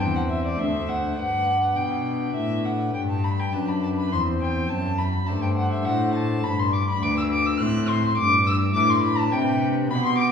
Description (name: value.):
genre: classical, baroque-style sonata movement with continuo.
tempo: 103 BPM.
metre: 3/4.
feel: straight.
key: G major.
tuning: A4 = 440 Hz.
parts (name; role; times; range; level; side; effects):
dark violin; melody; 0.0-10.3 s; D5 to F#6; -24 LUFS; left 1 dB; none.
pipe organ, cornet; accompaniment; 0.0-10.3 s; D2 to C5; -26 LUFS; left 2 dB; none.
rich cello; bass; 0.0-10.3 s; D2 to C3; -25 LUFS; equal; none.
room: wet recital hall reverb, RT60 1.6 s.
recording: heard from further back in the room, small room ambience.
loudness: -21 LUFS.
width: side -7 dB against mid.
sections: 0.0-2.9 A section; 2.9-10.3 B section.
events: none.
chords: 0.0 C/E; 0.6 D7; 1.2 G; 4.1 C/E; 4.7 D7/F#; 6.4 G; 7.6 F#dim/A; 8.2 G.